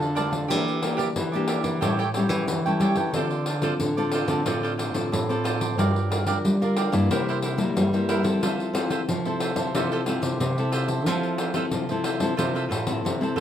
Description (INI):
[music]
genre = samba and choro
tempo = 91 BPM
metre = 4/4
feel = straight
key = F major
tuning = A4 = 440 Hz
[part]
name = cavaquinho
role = accompaniment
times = 0.0-13.4 s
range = E4 to A5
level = -29 LUFS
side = right 5 dB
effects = none
[part]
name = nylon-string guitar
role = accompaniment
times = 0.0-13.4 s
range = F2 to Bb4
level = -27 LUFS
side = left 3 dB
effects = none
[part]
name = nylon-string guitar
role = bass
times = 0.0-13.4 s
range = G2 to G3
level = -27 LUFS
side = right 1 dB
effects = none
[part]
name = pandeiro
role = percussion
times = 0.0-13.4 s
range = none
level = -29 LUFS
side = left 2 dB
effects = none
[sound]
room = moderate studio reverb, RT60 0.7 s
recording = none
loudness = -22 LUFS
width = side -10 dB against mid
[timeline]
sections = 0.0-13.4 A section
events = none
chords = 0.0 Bbmaj7; 0.5 Em7b5; 1.8 A7; 3.1 Dm7; 5.8 Gm7; 7.1 C7; 8.4 Fmaj7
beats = | 0.50 1.17 1.83 2.49 | 3.15 3.81 4.47 5.13 | 5.79 6.45 7.11 7.77 | 8.43 9.09 9.75 10.41 | 11.07 11.73 12.39 13.05